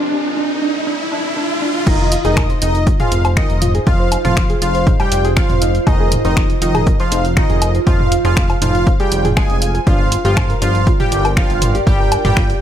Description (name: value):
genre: melodic techno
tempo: 120 BPM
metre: 4/4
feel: straight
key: F dorian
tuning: A4 = 440 Hz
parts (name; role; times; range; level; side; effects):
- riser; sound effects; 0.0-1.9 s; none; -20 LUFS; equal; none
- woody wave-folded pluck; arpeggios; 0.1-12.6 s; D4 to F6; -23 LUFS; equal; lush chorus, sidechain pumping, tape echo
- resonant sweep polysynth; melody; 1.9-12.5 s; Eb3 to Ab4; -22 LUFS; equal; chorus, tape echo
- soft supersaw; second line; 1.9-12.5 s; Eb5 to Ab5; -24 LUFS; equal; sidechain pumping, tape echo
- fat analog bass; bass; 1.9-12.5 s; F1 to G1; -18 LUFS; equal; tube saturation, sidechain pumping
- electronic kick drum; drums; 1.9-12.5 s; none; -16 LUFS; equal; none
- punchy analog drum machine; drums; 1.9-12.6 s; crash cymbal, finger snaps, hi-hat, toms, woodblock; -21 LUFS; equal; sidechain pumping on hats, sidechain pumping on toms, sidechain pumping on perc, sidechain pumping on cymbals
- ethereal airy pad; texture; 2.6-12.6 s; F4 to G5; -24 LUFS; right 3 dB; ensemble chorus, built-in reverb, sidechain pumping
room: little or no reverb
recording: none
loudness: -12 LUFS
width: side -10 dB against mid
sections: 0.0-1.9 A section; 1.9-12.6 B section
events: break 0.0-1.9; build-up 0.0-1.9; riser 0.0-1.9; filter sweep on synth pluck 0.0-1.9; drop 1.9-12.6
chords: 0.0 N.C.; 1.9 Fm7; 9.9 Gm7